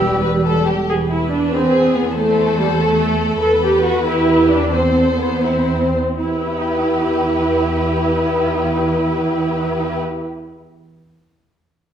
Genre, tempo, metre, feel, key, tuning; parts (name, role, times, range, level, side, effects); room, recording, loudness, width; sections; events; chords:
quick classical-period movement for symphony orchestra; 74-97 BPM (dotted quarters); 6/8; rubato; E minor; A4 = 437 Hz
warm studio violin section; melody; 0.0-10.0 s; G4 to C5; -27 LUFS; left 3 dB
mellow concert flute; second line; 0.0-0.6 s; E6; -26 LUFS; left 2 dB
rich studio violin section; second line; 0.0-10.0 s; E4 to C5; -22 LUFS; left 3 dB
dark studio viola section; accompaniment; 0.0-10.0 s; G3 to A4; -17 LUFS; right 1 dB
rich studio double bass section; bass; 0.0-0.7 s; E1; -26 LUFS; right 2 dB
warm studio cello section; bass; 0.0-10.0 s; E2; -22 LUFS; right 2 dB
wet recital hall reverb, RT60 1.4 s; recorded in a church or concert hall; -14 LUFS; side -9 dB against mid
0.9-6.2 A section; 6.2-9.4 B section
slowing down 2.8-6.2
0.0 Em; 0.9 E; 2.2 Am/E; 3.4 Em; 4.7 Am/E; 6.2 Em